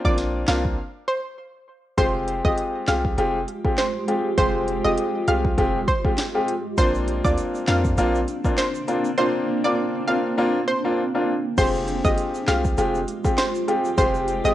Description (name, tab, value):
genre	dancehall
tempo	100 BPM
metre	4/4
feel	swing 56% on 16ths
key	F dorian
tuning	A4 = 443 Hz
part	analog pluck	melody	0.0-14.5 s	C5 to F5	-26 LUFS	right 1 dB	chorus, cassette tape
part	clear grand piano	accompaniment	0.0-14.5 s	Ab3 to G4	-23 LUFS	left 1 dB	cassette tape
part	warm 808-style bass	bass	0.0-14.5 s	F1 to F2	-26 LUFS	equal	none
part	afro-pop drum kit	drums	0.0-14.4 s	crash cymbal, handclaps, hi-hat, kick drum, snare drum	-24 LUFS	equal	cassette tape
part	granular cloud pad	sustained chords	2.8-14.5 s	Ab3 to G4	-29 LUFS	right 2 dB	built-in reverb, sidechain pumping, cassette tape
part	tube shaker	percussion	6.8-14.5 s	none	-44 LUFS	right 6 dB	none
room	light reverb, digital ambience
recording	home recording on cassette, nothing above 10.8 kHz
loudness	-20 LUFS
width	side -13 dB against mid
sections	0.0-2.0 A section; 2.0-11.6 B section; 11.6-14.5 C section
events	break 0.8-2.0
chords	0.0 Bbadd9; 2.0 Fmadd9; 6.8 Bbadd9; 11.6 Fmadd9